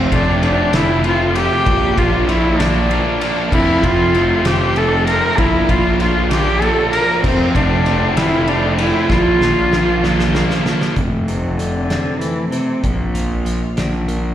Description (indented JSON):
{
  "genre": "quiet-loud alternative rock",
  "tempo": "64 BPM (dotted quarters)",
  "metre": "6/8",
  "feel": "straight",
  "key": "F major",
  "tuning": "A4 = 440 Hz",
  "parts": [
    { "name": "dark cello", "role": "melody", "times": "0.0-14.1 s", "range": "A2 to Bb4", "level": "-18 LUFS", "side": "equal", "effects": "plate reverb, slapback echo" },
    { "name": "distorted electric guitar", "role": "riff", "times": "0.0-11.0 s", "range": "F2 to F4", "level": "-23 LUFS", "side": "left 11 dB", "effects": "distortion, slapback echo" },
    { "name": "fuzz guitar", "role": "riff", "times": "0.0-11.0 s", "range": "F2 to D4", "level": "-21 LUFS", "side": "right 9 dB", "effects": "distortion, slapback echo" },
    { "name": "fuzz fingered electric bass", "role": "bass", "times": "0.0-14.3 s", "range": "F1 to Bb1", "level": "-19 LUFS", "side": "equal", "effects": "overdrive" },
    { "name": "loose indie drum kit", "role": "drums", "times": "0.1-14.2 s", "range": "crash cymbal, hi-hat, kick drum, ride cymbal, snare drum", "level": "-22 LUFS", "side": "equal", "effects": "none" },
    { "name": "twelve-string electric guitar", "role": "arpeggios", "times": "11.0-14.3 s", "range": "F2 to D4", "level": "-24 LUFS", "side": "left 1 dB", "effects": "analog chorus, slapback echo" }
  ],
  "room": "light reverb",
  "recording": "live gig heard through the venue's PA, recital hall reverb",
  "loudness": "-13 LUFS",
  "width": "side -11 dB against mid",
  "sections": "0.0-11.0 A section; 11.0-14.3 B section",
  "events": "drum fill 9.1-11.0",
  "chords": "0.0 F; 1.7 Bb; 3.5 F; 5.4 Bb; 7.2 F; 9.1 Bb; 11.0 F; 12.8 Bb"
}